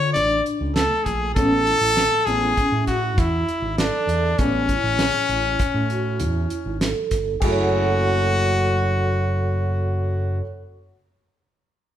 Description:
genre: progressive instrumental, band music in an uneven meter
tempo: 99 BPM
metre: 5/4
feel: straight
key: F# minor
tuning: A4 = 442 Hz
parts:
  - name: bright trumpet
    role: melody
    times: 0.0-10.4 s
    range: C#4 to D5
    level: -22 LUFS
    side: left 2 dB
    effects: none
  - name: vibraphone with soft mallets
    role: arpeggios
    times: 0.0-10.5 s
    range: A3 to F#5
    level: -26 LUFS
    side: right 3 dB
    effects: none
  - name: overdriven fingered electric bass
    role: bass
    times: 0.0-10.4 s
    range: F#1 to D3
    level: -24 LUFS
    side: equal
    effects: none
  - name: damped 70s drum kit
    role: drums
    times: 0.2-7.6 s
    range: crash cymbal, hi-hat, kick drum, snare drum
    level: -25 LUFS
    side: right 1 dB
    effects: none
  - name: dark concert grand piano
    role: accompaniment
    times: 1.4-10.4 s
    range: G#3 to G#4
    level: -29 LUFS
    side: left 2 dB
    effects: none
room: wet large studio reverb, RT60 1.1 s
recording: band playing live in one room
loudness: -18 LUFS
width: side -10 dB against mid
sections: 0.0-7.4 A section; 7.4-10.5 B section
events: none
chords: 0.0 D5; 1.4 Amaj7; 7.4 F#m7

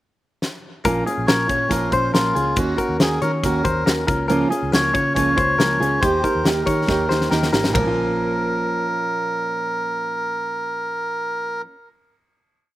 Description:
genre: jangly indie pop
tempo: 139 BPM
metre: 4/4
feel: straight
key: Bb minor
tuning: A4 = 441 Hz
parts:
  - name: big rock drum kit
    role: drums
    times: 0.4-7.8 s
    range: hi-hat, kick drum, ride cymbal, snare drum, toms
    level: -22 LUFS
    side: left 1 dB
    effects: none
  - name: fingerpicked steel-string acoustic guitar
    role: accompaniment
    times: 0.8-11.8 s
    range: Bb2 to G4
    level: -23 LUFS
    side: right 3 dB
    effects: none
  - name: vintage muted picked electric bass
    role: bass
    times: 0.8-11.6 s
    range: Ab1 to Eb3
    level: -26 LUFS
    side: equal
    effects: none
  - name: direct-recorded clean electric guitar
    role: arpeggios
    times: 0.9-9.0 s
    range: Gb4 to Db5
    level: -25 LUFS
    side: left 4 dB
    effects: slapback echo
  - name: melodica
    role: melody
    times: 1.3-11.6 s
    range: F4 to Db5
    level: -22 LUFS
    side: equal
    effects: slapback echo
room: little or no reverb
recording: recorded outdoors, with no room sound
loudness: -18 LUFS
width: side -15 dB against mid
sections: 0.0-0.8 pickup bar; 0.8-7.7 verse; 7.7-11.2 final chord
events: drum fill 0.4-0.8, 6.9-7.7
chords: 0.0 N.C.; 0.8 Bbm; 2.6 Ebm7; 4.1 Bbm/Db; 6.0 Eb; 7.7 Bbm

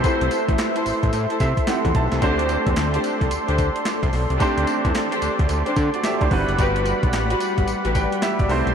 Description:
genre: R&B, new jack swing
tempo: 110 BPM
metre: 4/4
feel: swing 63% on 16ths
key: unclear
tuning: A4 = 439 Hz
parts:
  - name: clear baby grand piano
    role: accompaniment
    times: 0.0-8.7 s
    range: G3 to A5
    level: -25 LUFS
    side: right 2 dB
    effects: none
  - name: brassy analog pad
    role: sustained chords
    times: 0.0-8.7 s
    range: G3 to C6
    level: -26 LUFS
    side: equal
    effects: chorus
  - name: muted studio string section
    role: stabs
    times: 0.0-8.0 s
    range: D4 to C5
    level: -26 LUFS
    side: left 2 dB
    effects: tape echo
  - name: clean 12-bit digital drum machine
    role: drums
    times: 0.0-8.7 s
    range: handclaps, hi-hat, kick drum, snare drum, tambourine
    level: -24 LUFS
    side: equal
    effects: overdrive
  - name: fat analog bass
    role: bass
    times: 0.2-8.7 s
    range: F#1 to D3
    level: -23 LUFS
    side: equal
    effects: none
room: wet huge ambient reverb, RT60 8.1 s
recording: dreamy mix soaked in reverb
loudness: -18 LUFS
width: side -7 dB against mid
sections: 0.0-8.7 A section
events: grand piano fill 1.1-2.2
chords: 0.0 C6; 2.2 D7sus4; 6.3 Gmaj7

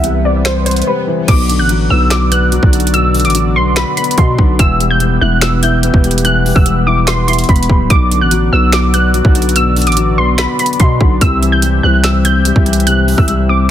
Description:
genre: hip hop, trap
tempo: 145 BPM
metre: 4/4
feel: half-time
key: B phrygian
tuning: A4 = 440 Hz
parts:
  - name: warbly dusty pluck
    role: melody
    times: 0.0-13.7 s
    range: B4 to G6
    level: -16 LUFS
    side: right 1 dB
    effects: chorus, low-pass filter, tape echo
  - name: felt-muted upright piano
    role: accompaniment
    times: 0.0-13.7 s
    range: B2 to E4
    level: -18 LUFS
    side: left 9 dB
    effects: low-pass filter
  - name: growling 808-style bass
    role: bass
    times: 0.0-13.7 s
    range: D1 to B2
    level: -14 LUFS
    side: right 1 dB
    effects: none
  - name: trap drum kit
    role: drums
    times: 0.0-13.4 s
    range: crash cymbal, finger snaps, hi-hat, kick drum, snare drum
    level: -13 LUFS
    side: right 1 dB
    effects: soft clipping on snare
  - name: swell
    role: sound effects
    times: 0.0-1.3 s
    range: none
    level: -24 LUFS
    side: equal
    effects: none
  - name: warm analog pad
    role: sustained chords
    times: 1.3-13.7 s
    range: E3 to E5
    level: -23 LUFS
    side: right 4 dB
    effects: chorus
room: little or no reverb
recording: dense, heavily limited modern master, faint mains hum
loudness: -9 LUFS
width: side -11 dB against mid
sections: 0.0-1.3 A section; 1.3-13.7 B section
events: swell 0.0-1.3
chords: 0.0 C; 1.3 Bm; 4.6 Em; 7.9 Bm; 11.2 C

